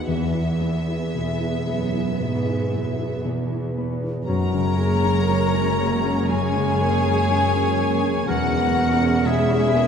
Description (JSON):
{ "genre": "cinematic, emotional film score for orchestra", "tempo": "56-62 BPM", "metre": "4/4", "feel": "rubato", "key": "unclear", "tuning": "A4 = 440 Hz", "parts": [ { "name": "rich symphonic violin section", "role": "melody", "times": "0.0-9.9 s", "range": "E5 to A#5", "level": "-29 LUFS", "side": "left 5 dB", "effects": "none" }, { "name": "dark grand piano", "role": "accompaniment", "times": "0.0-9.9 s", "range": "E2 to F#4", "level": "-25 LUFS", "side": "right 2 dB", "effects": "none" }, { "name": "warm studio viola section", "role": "accompaniment", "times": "0.0-9.9 s", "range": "G#3 to G#4", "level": "-29 LUFS", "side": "right 2 dB", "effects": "none" }, { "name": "concert harp", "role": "arpeggios", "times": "0.0-9.9 s", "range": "F#2 to C#6", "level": "-28 LUFS", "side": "left 3 dB", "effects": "none" }, { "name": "rich symphonic cello section", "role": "bass", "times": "0.0-9.9 s", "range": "E2 to G#2", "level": "-28 LUFS", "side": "right 4 dB", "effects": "none" }, { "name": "hollow concert flute", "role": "second line", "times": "4.3-9.9 s", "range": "E5 to A#5", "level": "-28 LUFS", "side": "left 3 dB", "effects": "none" }, { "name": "rich studio violin section", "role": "second line", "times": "4.3-9.9 s", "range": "E4 to A#4", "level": "-30 LUFS", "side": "left 4 dB", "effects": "none" }, { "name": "warm oboe", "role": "second line", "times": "4.3-9.9 s", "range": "G#4 to C#5", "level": "-30 LUFS", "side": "right 1 dB", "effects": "none" }, { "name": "dark French horn section", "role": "sustained chords", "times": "4.3-9.9 s", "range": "B3 to A#4", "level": "-27 LUFS", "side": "left 3 dB", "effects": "none" }, { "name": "warm symphonic double bass section", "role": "bass", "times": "4.3-9.9 s", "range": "E1 to F#1", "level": "-27 LUFS", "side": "right 2 dB", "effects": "none" } ], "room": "wet church reverb, RT60 3.4 s", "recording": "recorded in a church or concert hall", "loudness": "-19 LUFS", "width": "side -7 dB against mid", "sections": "0.0-4.3 A section; 4.3-9.9 A section", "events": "none", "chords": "0.1 E; 4.3 F#add9; 8.3 C#m7/E" }